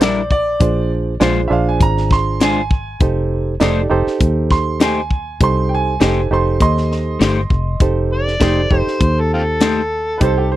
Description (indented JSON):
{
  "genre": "straight-eighth soul blues",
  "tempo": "100 BPM",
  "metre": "4/4",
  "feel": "straight",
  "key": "F mixolydian",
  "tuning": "A4 = 440 Hz",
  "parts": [
    { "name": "clear upright piano", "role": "second line", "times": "0.0-10.6 s", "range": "G4 to C6", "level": "-21 LUFS", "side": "right 3 dB", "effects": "tape echo" },
    { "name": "barky reed electric piano", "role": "accompaniment", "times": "0.0-10.6 s", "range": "D4 to D5", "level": "-20 LUFS", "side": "right 4 dB", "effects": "overdrive" },
    { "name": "clean electric guitar", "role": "stabs", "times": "0.0-9.8 s", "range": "G3 to C5", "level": "-18 LUFS", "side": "left 4 dB", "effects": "lush chorus" },
    { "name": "fingered electric bass", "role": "bass", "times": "0.0-10.6 s", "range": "F1 to Eb2", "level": "-19 LUFS", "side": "left 1 dB", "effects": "none" },
    { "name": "tight funk drum kit", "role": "drums", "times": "0.0-10.4 s", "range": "hi-hat, kick drum, snare drum", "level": "-16 LUFS", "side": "left 1 dB", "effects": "none" },
    { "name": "overdriven harmonica", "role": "melody", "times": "8.1-10.5 s", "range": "C4 to D5", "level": "-20 LUFS", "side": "left 1 dB", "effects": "none" }
  ],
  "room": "little or no reverb",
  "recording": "dry, close 1970s-style studio recording",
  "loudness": "-14 LUFS",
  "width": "side -14 dB against mid",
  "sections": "0.0-7.8 A section; 7.8-10.6 B section",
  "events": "upright piano solo 0.0-7.8",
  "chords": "0.0 C9 (rootless); 0.6 Bb9; 3.0 F9"
}